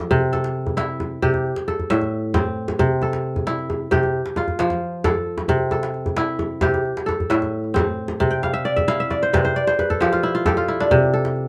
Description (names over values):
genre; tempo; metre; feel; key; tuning
west african traditional, West African string and xylophone music; 89 BPM (dotted quarters); 12/8; straight; C major; A4 = 439 Hz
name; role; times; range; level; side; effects
kora; arpeggios; 0.0-11.5 s; A2 to G5; -22 LUFS; equal; none
djembe; percussion; 0.0-11.4 s; none; -27 LUFS; equal; none
room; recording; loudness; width
moderate small room reverb, RT60 0.5 s; none; -21 LUFS; mono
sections
0.0-11.5 A section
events
kora fill 8.3-10.9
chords
0.1 C; 1.5 Am; 2.8 C; 4.1 F; 5.5 C; 6.8 Am; 8.2 C; 9.6 F; 10.9 C